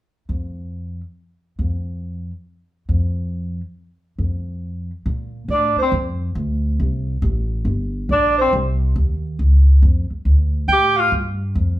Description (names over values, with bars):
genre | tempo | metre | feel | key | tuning
jazz, small-group swing and bop | 138 BPM | 3/4 | swing 65% on 8ths | unclear | A4 = 440 Hz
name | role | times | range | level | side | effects
upright bass | bass | 0.3-11.8 s | G1 to Bb2 | -18 LUFS | equal | none
warm tenor saxophone | melody | 5.5-5.9, 8.1-8.5, 10.7-11.1 s | C4 to G4 | -18 LUFS | right 1 dB | none
breathy alto saxophone | second line | 5.5-5.9, 8.1-8.5, 10.7-11.1 s | C5 to G5 | -19 LUFS | right 1 dB | none
room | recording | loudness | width
wet large studio reverb, RT60 0.9 s | band playing live in one room | -17 LUFS | side -15 dB against mid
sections
0.0-5.1 A section; 5.1-11.8 B section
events
none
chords
0.0 N.C.; 5.1 Bb5; 6.4 D5; 7.7 Gmadd11; 9.0 Ebsus2; 10.3 D5